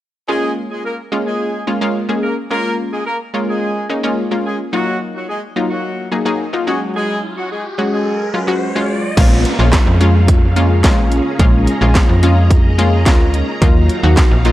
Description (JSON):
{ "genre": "dance-pop", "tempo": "108 BPM", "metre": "4/4", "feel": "straight", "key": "unclear", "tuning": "A4 = 440 Hz", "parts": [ { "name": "clear horn section", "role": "melody", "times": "0.3-8.3 s", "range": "Gb3 to Bb4", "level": "-22 LUFS", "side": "equal", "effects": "sidechain pumping, tape echo" }, { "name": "analog pluck", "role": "accompaniment", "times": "0.3-14.5 s", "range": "Gb3 to Ab4", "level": "-18 LUFS", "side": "left 1 dB", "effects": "chorus" }, { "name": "riser and downlifter", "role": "sound effects", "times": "6.1-13.6 s", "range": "none", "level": "-26 LUFS", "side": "equal", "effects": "none" }, { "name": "string machine, cellos", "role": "sustained chords", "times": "9.2-14.5 s", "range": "Gb3 to Bb5", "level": "-22 LUFS", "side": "right 1 dB", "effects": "ensemble chorus, sidechain pumping" }, { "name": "slap-like FM bass", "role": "bass", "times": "9.2-14.5 s", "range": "Bb1 to F2", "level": "-13 LUFS", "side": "equal", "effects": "sidechain pumping" }, { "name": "house drum kit", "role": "drums", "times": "9.2-14.5 s", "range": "crash cymbal, handclaps, hi-hat, kick drum, snare drum", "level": "-12 LUFS", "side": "equal", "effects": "overdrive" } ], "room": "little or no reverb", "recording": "dry, gritty hardware recording", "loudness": "-13 LUFS", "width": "side -15 dB against mid", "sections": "0.3-9.2 A section; 9.2-14.5 B section", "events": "riser 6.1-9.2", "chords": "0.3 Bbm7; 4.7 Ebmadd9; 6.7 Gbsus2; 9.2 Bbm7; 13.6 Ebmadd9", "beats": "| 0.28 0.84 1.40 1.95 | 2.51 3.06 3.62 4.17 | 4.73 5.28 5.84 6.39 | 6.95 7.51 8.06 8.62 | 9.17 9.73 10.28 10.84 | 11.39 11.95 12.51 13.06 | 13.62 14.17" }